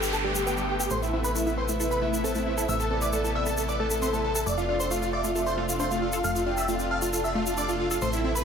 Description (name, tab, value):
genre	uplifting trance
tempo	135 BPM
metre	4/4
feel	straight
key	unclear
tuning	A4 = 440 Hz
part	big supersaw lead	melody	0.0-8.4 s	E4 to F5	-29 LUFS	right 1 dB	low-pass filter, ping-pong delay
part	warm concert grand piano	second line	0.0-8.4 s	E5 to F6	-36 LUFS	equal	low-pass filter, ping-pong delay
part	warm velvety synth lead	second line	0.0-8.4 s	G4 to A5	-34 LUFS	left 1 dB	chorus, ping-pong delay
part	lush unison pad	sustained chords	0.0-8.4 s	C3 to G4	-33 LUFS	equal	chorus
part	wide unison pluck	arpeggios	0.0-8.3 s	G3 to A4	-34 LUFS	left 2 dB	phaser, ping-pong delay
part	solid FM bass	bass	0.0-8.4 s	F1 to A1	-32 LUFS	equal	none
part	egg shaker	percussion	0.0-8.4 s	none	-34 LUFS	left 1 dB	none
part	noise sweep	sound effects	0.0-0.9 s	none	-34 LUFS	right 1 dB	none
room	moderate lush hall reverb, RT60 2.8 s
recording	none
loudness	-24 LUFS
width	side -7 dB against mid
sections	0.0-8.4 A section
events	noise sweep 0.0-0.9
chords	0.0 Gadd9; 0.9 Amadd9; 4.5 F6